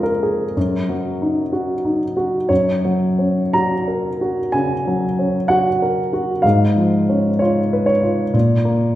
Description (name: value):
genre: classical, romantic character piece for solo piano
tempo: 62 BPM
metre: 4/4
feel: rubato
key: unclear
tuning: A4 = 438 Hz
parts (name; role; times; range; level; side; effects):
- warm grand piano; solo; 0.0-9.0 s; F2 to Bb5; -16 LUFS; equal; none
room: wet recital hall reverb, RT60 1.4 s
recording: heard from further back in the room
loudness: -16 LUFS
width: side -14 dB against mid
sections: 0.0-9.0 A section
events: none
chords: 0.0 Bb7/F; 0.6 Ebm/Gb; 2.5 Gb; 6.4 Db7/Ab; 8.3 Gb/Bb (rootless)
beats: 0.56 1.53 | 2.50 3.54 4.53 5.48 | 6.44 7.40 8.34